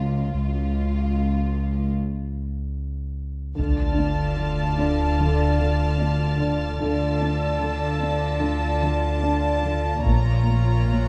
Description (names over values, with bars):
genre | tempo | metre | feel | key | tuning
cinematic, suspense film score | 74 BPM | 4/4 | straight | D minor from 3.6 s | A4 = 438 Hz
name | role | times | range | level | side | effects
rich studio violin section | melody | 0.0-11.1 s | F4 to Bb5 | -33 LUFS | equal | none
rich studio double bass section | bass | 0.0-11.1 s | Bb1 to D2 | -30 LUFS | equal | none
rich symphonic cello section | bass | 0.0-11.1 s | Db2 to D3 | -30 LUFS | equal | none
sub bass with octave | drone | 0.0-11.1 s | Bb1 to D2 | -29 LUFS | equal | none
warm concert grand piano | texture | 0.0-10.1 s | D4 to D5 | -37 LUFS | equal | none
warm chamber violin section | second line | 3.6-11.1 s | F4 to D5 | -32 LUFS | equal | none
warm studio cello section | riff | 3.6-11.1 s | Bb2 to D4 | -31 LUFS | equal | none
taiko ensemble | drums | 3.6-5.2, 10.1-11.1 s | none | -29 LUFS | equal | none
sub drop | sound effects | 3.6-6.8 s | none | -32 LUFS | equal | none
dark studio violin section | texture | 3.6-11.1 s | F6 to A6 | -40 LUFS | equal | none
room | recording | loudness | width
moderate scoring stage reverb, RT60 1.6 s | dark, warm production | -23 LUFS | mono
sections
0.0-3.6 A section; 3.6-11.1 B section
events
break 2.0-3.6; impact 3.6-6.8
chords
0.0 Db; 3.6 Dm; 10.1 Bbm